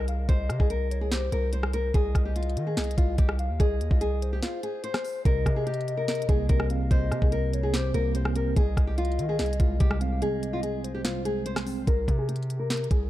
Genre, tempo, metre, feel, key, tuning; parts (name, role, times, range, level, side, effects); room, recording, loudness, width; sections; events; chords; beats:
hip hop, trap; 145 BPM; 4/4; half-time; C minor; A4 = 439 Hz
nylon-string guitar; melody; 0.0-13.1 s; F4 to C5; -31 LUFS; left 2 dB; low-pass filter, ping-pong delay
hollow clarinet-like synth lead; second line; 0.0-11.8 s; C5 to F5; -36 LUFS; left 3 dB; chorus, ping-pong delay
hard-hitting 808-style bass; bass; 0.0-13.1 s; C2 to Eb3; -28 LUFS; equal
trap drum kit; drums; 0.1-13.0 s; hi-hat, kick drum, rim click, snare drum; -26 LUFS; equal
mellow tine electric piano; accompaniment; 5.3-11.9 s; C2 to C4; -31 LUFS; right 2 dB; fast stereo tremolo
digital ambience; dark, warm production; -24 LUFS; side -15 dB against mid
0.0-11.9 A section; 11.9-13.1 B section
break 4.4-5.3, 10.2-11.9; filter sweep on nylon-string guitar 11.9-13.1
0.0 Cm; 1.9 Cmadd11; 5.3 Cm7; 8.6 Fm7/C; 11.9 Abmaj9/C
| 0.29 0.70 1.12 1.53 | 1.94 2.36 2.77 3.19 | 3.60 4.01 4.43 4.84 | 5.25 5.67 6.08 6.50 | 6.91 7.32 7.74 8.15 | 8.56 8.98 9.39 9.80 | 10.22 10.63 11.05 11.46 | 11.87 12.29 12.70